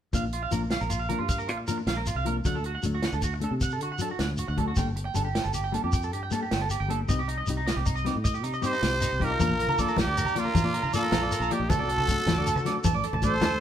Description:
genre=highlife guitar band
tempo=104 BPM (dotted quarters)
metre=12/8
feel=straight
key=Bb major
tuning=A4 = 435 Hz
part: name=mellow electric guitar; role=accompaniment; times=0.1-13.4 s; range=F3 to A4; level=-33 LUFS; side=left 5 dB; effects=none
part: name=electric guitar at the edge of break-up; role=arpeggios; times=0.1-13.5 s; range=Eb4 to Bb5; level=-31 LUFS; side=right 5 dB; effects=phaser
part: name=fingered electric bass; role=bass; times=0.1-13.6 s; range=G1 to D3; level=-31 LUFS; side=equal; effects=none
part: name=warm soul drum kit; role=drums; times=0.1-13.5 s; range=hi-hat, kick drum, snare drum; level=-30 LUFS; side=equal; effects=none
part: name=shekere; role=percussion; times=0.1-13.5 s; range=none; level=-34 LUFS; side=left 2 dB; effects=none
part: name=growling trumpet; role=melody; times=8.7-13.6 s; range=F4 to C5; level=-28 LUFS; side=right 1 dB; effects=none
part: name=mellow trumpet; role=second line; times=8.7-13.6 s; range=D4 to A4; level=-36 LUFS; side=left 4 dB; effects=none
part: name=congas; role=percussion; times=9.4-13.5 s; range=none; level=-30 LUFS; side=left 3 dB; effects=none
room=moderate stone room reverb, RT60 1.3 s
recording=band playing live in one room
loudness=-24 LUFS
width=side -10 dB against mid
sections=0.1-9.4 A section; 9.4-13.6 B section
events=none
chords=0.1 Bb; 2.5 D; 4.8 Gmadd9; 7.1 Cm; 9.4 Bb; 11.7 D

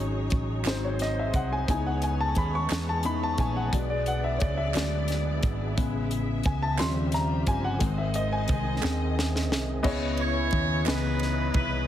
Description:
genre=slow gospel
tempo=59 BPM (dotted quarters)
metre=6/8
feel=straight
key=C# minor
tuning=A4 = 441 Hz
part: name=warm concert grand piano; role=accompaniment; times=0.0-11.9 s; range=C#3 to C#6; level=-29 LUFS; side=left 3 dB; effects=none
part: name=rich studio string section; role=sustained chords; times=0.0-9.8 s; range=C#4 to E5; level=-39 LUFS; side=left 1 dB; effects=none
part: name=tonewheel organ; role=sustained chords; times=0.0-11.9 s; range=C#3 to D#5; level=-37 LUFS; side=right 3 dB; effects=slow rotary speaker, overdrive, chorus vibrato
part: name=hollow-body short-scale fingered electric bass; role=bass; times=0.0-11.9 s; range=G1 to E2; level=-29 LUFS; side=right 1 dB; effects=none
part: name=crisp fusion drum kit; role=drums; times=0.3-11.7 s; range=crash cymbal, hi-hat, kick drum, ride cymbal, snare drum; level=-30 LUFS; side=right 1 dB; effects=none
part: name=group handclap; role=percussion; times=0.6-11.2 s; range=none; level=-37 LUFS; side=right 8 dB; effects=none
part: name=clear horn section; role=melody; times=10.2-11.9 s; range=D#4 to C#5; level=-29 LUFS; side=right 1 dB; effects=none
room=light reverb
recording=heavily compressed radio sound, multiband compression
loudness=-24 LUFS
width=side -11 dB against mid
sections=0.0-9.8 A section; 9.8-11.9 B section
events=grand piano solo 0.0-9.8; drum fill 8.8-9.8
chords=0.0 G#7sus4; 0.7 G#7; 1.7 C#m7; 3.7 E7/B; 5.8 Amaj7; 6.8 D#13; 7.8 G#; 9.8 C#m9

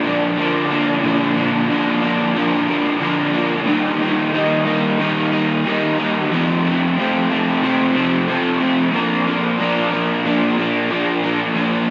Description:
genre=rock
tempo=91 BPM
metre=4/4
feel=straight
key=unclear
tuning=A4 = 440 Hz
part: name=crunchy overdriven guitar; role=solo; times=0.0-11.9 s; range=F2 to Eb4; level=-18 LUFS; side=equal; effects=lush chorus
room=wet huge ambient reverb, RT60 6.2 s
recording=dreamy mix soaked in reverb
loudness=-18 LUFS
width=mono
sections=0.0-11.9 A section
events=none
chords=0.0 Bb; 3.7 Eb; 6.3 F; 8.9 Bb

